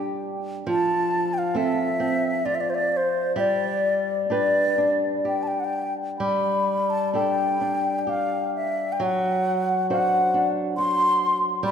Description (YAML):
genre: celtic folk, Celtic slow air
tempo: 62-70 BPM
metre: 3/4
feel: rubato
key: unclear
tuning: A4 = 440 Hz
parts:
  - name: wooden flute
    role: melody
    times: 0.0-11.7 s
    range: C5 to C6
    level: -23 LUFS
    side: left 1 dB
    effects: none
  - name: flamenco guitar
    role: accompaniment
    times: 0.0-11.7 s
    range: F3 to C5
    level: -25 LUFS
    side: equal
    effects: none
room: wet church reverb, RT60 2.8 s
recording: recorded in a church or concert hall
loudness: -21 LUFS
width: side -7 dB against mid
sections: 0.0-11.7 A section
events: none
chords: 0.0 Gsus2; 0.7 F; 3.4 G; 6.2 Gsus2; 9.0 D7/F#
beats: | 0.67 1.55 2.45 | 3.35 4.28 5.24 | 6.19 7.13 8.07 | 8.99 9.89 10.77 | 11.63